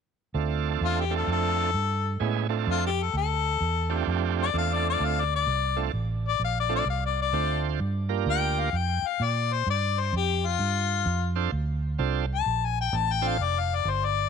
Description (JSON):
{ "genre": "electric blues shuffle", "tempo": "129 BPM", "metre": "4/4", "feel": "swing 64% on 8ths", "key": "D minor", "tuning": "A4 = 441 Hz", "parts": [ { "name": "bright tonewheel organ", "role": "accompaniment", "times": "0.3-13.4 s", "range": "G#3 to C5", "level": "-31 LUFS", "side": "right 16 dB", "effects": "slow rotary speaker, overdrive" }, { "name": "vintage muted fingered electric bass", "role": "bass", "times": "0.3-14.3 s", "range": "F1 to Bb2", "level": "-28 LUFS", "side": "right 2 dB", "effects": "none" }, { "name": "clear harmonica", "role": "melody", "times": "0.8-14.3 s", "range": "F4 to A5", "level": "-27 LUFS", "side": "left 11 dB", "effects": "overdrive" } ], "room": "studio ambience", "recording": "1960s-style stereo with parts hard left and right", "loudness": "-24 LUFS", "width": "side -6 dB against mid", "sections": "0.3-14.3 A section", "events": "harmonica solo 0.3-14.3", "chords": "0.3 Dm7; 7.8 Gm7; 11.5 Dm7", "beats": "| 0.35 0.81 1.28 1.74 | 2.21 2.67 3.14 3.60 | 4.07 4.54 5.00 5.47 | 5.93 6.40 6.87 7.33 | 7.80 8.26 8.73 9.20 | 9.66 10.13 10.60 11.06 | 11.53 11.99 12.46 12.93 | 13.39 13.86" }